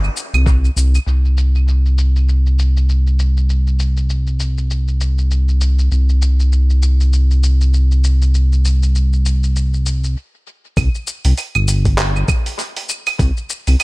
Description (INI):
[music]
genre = organic downtempo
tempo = 99 BPM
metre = 4/4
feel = swing 58% on 16ths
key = unclear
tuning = A4 = 440 Hz
[part]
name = smooth gliding synth bass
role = bass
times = 0.0-13.8 s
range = G1 to C2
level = -13 LUFS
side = equal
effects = none
[part]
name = dusty soul sampler-style drum kit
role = drums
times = 0.0-13.8 s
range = claves, handclaps, hi-hat, shaker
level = -23 LUFS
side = right 1 dB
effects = low-pass filter on perc, studio ambience, low-pass filter on snare, low-pass filter on hats, analog delay
[part]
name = electronic kick drum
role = drums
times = 0.5-0.6, 10.8-13.3 s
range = none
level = -17 LUFS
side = equal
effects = studio ambience
[sound]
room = little or no reverb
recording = echo-heavy mix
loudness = -13 LUFS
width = side -23 dB against mid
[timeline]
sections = 0.0-1.1 A section; 1.1-10.8 B section; 10.8-13.8 C section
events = stop 10.2-10.8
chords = none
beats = 0.47 | 1.07 1.68 2.28 2.89 | 3.50 4.10 4.71 5.31 | 5.92 6.53 7.13 7.74 | 8.34 8.95 9.56 10.16 | 10.77 11.37 11.98 12.59 | 13.19 13.80